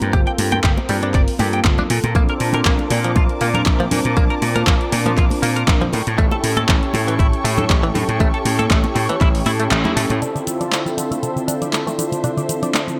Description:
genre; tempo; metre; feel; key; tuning
nu-disco, nu disco; 119 BPM; 4/4; swing 54% on 16ths; D minor; A4 = 440 Hz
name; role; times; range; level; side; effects
warm analog pad; accompaniment; 0.0-13.0 s; D3 to A5; -25 LUFS; equal; chorus, tape echo
slap bass; bass; 0.0-10.2 s; G1 to Bb2; -23 LUFS; equal; none
house drum kit; drums; 0.0-13.0 s; handclaps, hi-hat, shaker; -26 LUFS; equal; none
direct-recorded clean electric guitar; riff; 0.1-12.8 s; A2 to G5; -27 LUFS; equal; analog chorus, low-pass filter, tape echo
electronic kick drum; drums; 0.1-9.3 s; none; -19 LUFS; equal; none
congas; percussion; 0.1-10.2 s; none; -28 LUFS; equal; none
muted symphonic violin section; sustained chords; 2.1-13.0 s; Bb3 to D6; -31 LUFS; equal; sidechain pumping, low-pass filter
soft round pluck; arpeggios; 10.2-12.9 s; C3 to A3; -29 LUFS; equal; chorus, sidechain pumping, tape echo
room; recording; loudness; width
light reverb; echo-heavy mix; -18 LUFS; mono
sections
0.0-10.2 A section; 10.2-13.0 B section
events
kick drops out 9.7-10.2; band accent 9.7; filter sweep on clean electric guitar 10.2-13.0; filter sweep on synth arpeggio sound 10.2-13.0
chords
0.0 Gm11; 1.9 Bbmaj7; 5.9 A7; 10.2 Dm9

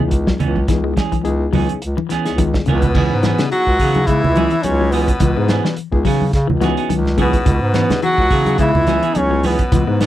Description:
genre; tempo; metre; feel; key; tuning
afrobeat; 106 BPM; 4/4; swing 55% on 16ths; C# minor; A4 = 440 Hz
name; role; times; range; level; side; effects
bright reed electric piano; accompaniment; 0.0-10.1 s; B3 to B4; -25 LUFS; left 7 dB; fast tremolo
clean electric guitar; arpeggios; 0.0-10.1 s; C#3 to G#3; -23 LUFS; left 9 dB; slapback echo
semi-hollow electric guitar; stabs; 0.0-10.1 s; E3 to G#4; -23 LUFS; right 9 dB; none
mellow bass clarinet; bass; 0.0-10.1 s; C#2 to C#3; -19 LUFS; equal; none
congas; percussion; 0.0-10.1 s; none; -22 LUFS; right 2 dB; none
warm soul drum kit; drums; 0.1-10.1 s; crash cymbal, hi-hat, kick drum, snare drum; -20 LUFS; equal; none
bright trombone; melody; 2.7-10.1 s; B3 to F#4; -19 LUFS; right 1 dB; none
edgy alto saxophone; second line; 2.7-10.1 s; B4 to F#5; -28 LUFS; right 3 dB; none
raspy baritone saxophone; second line; 2.7-10.1 s; B2 to F#3; -25 LUFS; left 6 dB; none
room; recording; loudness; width
little or no reverb; dry, close 1970s-style studio recording; -14 LUFS; side -13 dB against mid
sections
0.0-2.9 A section; 2.9-10.1 B section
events
drum fill 2.4-2.9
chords
0.0 C#m7

